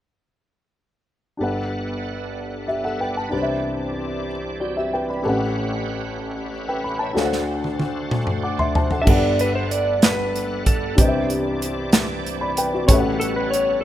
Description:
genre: slow gospel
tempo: 63 BPM (dotted quarters)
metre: 6/8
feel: straight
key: G major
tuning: A4 = 439 Hz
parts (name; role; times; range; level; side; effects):
- dark grand piano; accompaniment; 1.4-13.8 s; G1 to D6; -23 LUFS; left 1 dB; none
- bright tonewheel organ; sustained chords; 1.4-13.8 s; D3 to A5; -30 LUFS; right 2 dB; slow rotary speaker, overdrive, chorus vibrato
- modern studio drum kit; drums; 7.2-13.7 s; crash cymbal, hi-hat, kick drum, snare drum, toms; -19 LUFS; right 1 dB; none
- clean lap steel guitar; melody; 9.0-13.8 s; G4 to E5; -23 LUFS; equal; none
room: light reverb, studio ambience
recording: rough home demo mix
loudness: -19 LUFS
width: side -12 dB against mid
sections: 1.4-9.1 A section; 9.1-13.8 B section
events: drum fill 7.2-9.1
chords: 1.4 Gmaj9; 3.3 Cmaj9; 5.2 A13; 7.2 D7; 9.1 Gmaj9; 11.0 Cmaj9; 12.9 A13

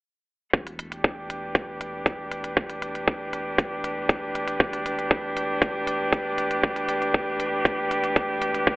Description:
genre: piano and strings electronica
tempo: 118 BPM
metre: 4/4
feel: straight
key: unclear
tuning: A4 = 439 Hz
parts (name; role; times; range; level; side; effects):
- rich string quartet; sustained chords; 0.5-8.8 s; A3 to B4; -31 LUFS; equal; shimmer reverb
- round analog bass; bass; 0.5-8.8 s; E1; -43 LUFS; equal; tube saturation, sidechain pumping
- electronic kick drum; drums; 0.5-8.8 s; none; -24 LUFS; equal; none
- electronic hi-hat; drums; 0.7-8.6 s; none; -41 LUFS; equal; none
room: little or no reverb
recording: telephone sound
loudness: -23 LUFS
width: side -22 dB against mid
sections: 0.5-8.8 A section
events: fade-in on string quartet 0.5-8.8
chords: 0.5 Gadd9/E

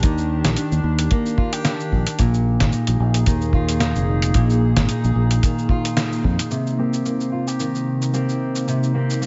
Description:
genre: folktronica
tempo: 111 BPM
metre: 4/4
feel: swing 56% on 16ths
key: C minor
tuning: A4 = 440 Hz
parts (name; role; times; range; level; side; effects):
- warbly tape-like pad; sustained chords; 0.0-9.3 s; C3 to Ab4; -28 LUFS; equal; chorus, built-in reverb, phaser
- fingerpicked steel-string acoustic guitar; arpeggios; 0.0-9.3 s; Bb2 to G4; -25 LUFS; equal; low-pass filter
- fingered electric bass; bass; 0.0-6.4 s; F1 to F2; -22 LUFS; equal; tube saturation
- kick drum; drums; 0.0-6.4 s; none; -22 LUFS; equal; none
- lo-fi sampler-style drum kit; drums; 0.0-9.3 s; hi-hat, shaker, snare drum; -27 LUFS; equal; none
room: light reverb, studio reverb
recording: nothing above 7.8 kHz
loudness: -20 LUFS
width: mono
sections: 0.0-6.5 A section; 6.5-9.3 B section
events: band accent 6.0; filter sweep on steel-string acoustic guitar 6.5-9.3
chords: 0.0 Ebmaj7; 2.2 Bb7sus4; 6.5 Cm7

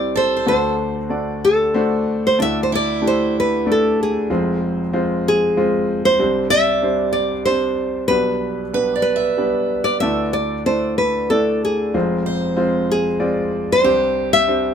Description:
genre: acoustic folk-pop ballad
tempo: 94 BPM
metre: 3/4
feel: straight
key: unclear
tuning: A4 = 440 Hz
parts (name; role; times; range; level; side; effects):
- nylon-string guitar; melody; 0.0-14.7 s; Ab4 to E5; -18 LUFS; left 1 dB; none
- warm grand piano; accompaniment; 0.0-14.7 s; F1 to D5; -20 LUFS; equal; none
- picked steel-string acoustic guitar; arpeggios; 0.0-14.7 s; E4 to E5; -24 LUFS; right 4 dB; none
room: light reverb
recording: minimal, uncompressed stereo recording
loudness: -16 LUFS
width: side -8 dB against mid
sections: 0.0-2.4 A section; 2.4-14.7 B section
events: none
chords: 0.5 D7; 2.4 Dsus2; 4.3 Fm; 6.2 Csus2; 8.1 G/B; 10.0 Dsus2; 11.9 Fm; 13.8 Csus2

